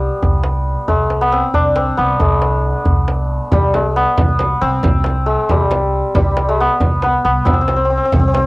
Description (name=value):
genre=Persian modal ensemble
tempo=91 BPM (dotted quarters)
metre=6/8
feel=straight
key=C avaz esfahan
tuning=A4 = 440 Hz
part: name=santur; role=melody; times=0.0-8.5 s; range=G3 to G4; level=-16 LUFS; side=left 1 dB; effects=cassette tape
part: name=upright bass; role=bass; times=0.0-8.5 s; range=C2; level=-18 LUFS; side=equal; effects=none
part: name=tombak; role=percussion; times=0.0-8.4 s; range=none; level=-18 LUFS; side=right 1 dB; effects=none
part: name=frame drum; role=percussion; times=3.5-8.4 s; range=none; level=-22 LUFS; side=right 2 dB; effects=none
room=little or no reverb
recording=home recording on cassette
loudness=-13 LUFS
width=side -23 dB against mid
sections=0.0-8.5 A section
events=none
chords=none